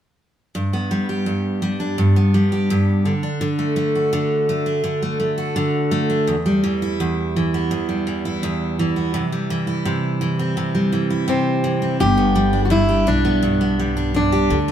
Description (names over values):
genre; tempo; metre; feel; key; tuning
pop; 84 BPM; 4/4; straight; G major; A4 = 440 Hz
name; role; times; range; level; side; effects
picked steel-string acoustic guitar; accompaniment; 0.5-14.7 s; E2 to G4; -18 LUFS; right 1 dB; none
fingerpicked plugged-in steel-string acoustic guitar; melody; 11.3-14.7 s; C4 to G4; -19 LUFS; equal; none
upright bass; bass; 12.0-14.7 s; G1 to D2; -21 LUFS; left 2 dB; none
room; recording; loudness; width
moderate stone room reverb, RT60 1.1 s; band playing live in one room; -17 LUFS; side -10 dB against mid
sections
0.6-12.0 A section; 12.0-14.7 B section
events
none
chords
0.6 G; 3.1 D; 6.3 Em; 9.1 C; 12.0 G